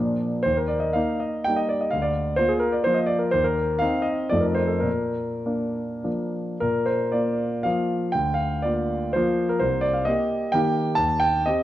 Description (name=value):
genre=classical, romantic triple-time dance for piano with dotted rhythms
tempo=96-138 BPM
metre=3/4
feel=rubato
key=Bb major from 3.3 s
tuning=A4 = 442 Hz
part: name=warm concert grand piano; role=solo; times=0.0-11.6 s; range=C2 to A5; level=-21 LUFS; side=equal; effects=none
room=moderate recital hall reverb, RT60 1.4 s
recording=worn, warbling old tape, cassette tape, warbly pitch drift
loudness=-21 LUFS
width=side -13 dB against mid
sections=0.0-6.6 A section; 6.6-11.6 B section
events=none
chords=0.5 Eb; 1.9 Bb/D; 3.3 Cm/Eb; 4.3 F7; 4.9 Bb; 8.1 Bb/D; 9.6 Cm7; 11.0 Cm/Eb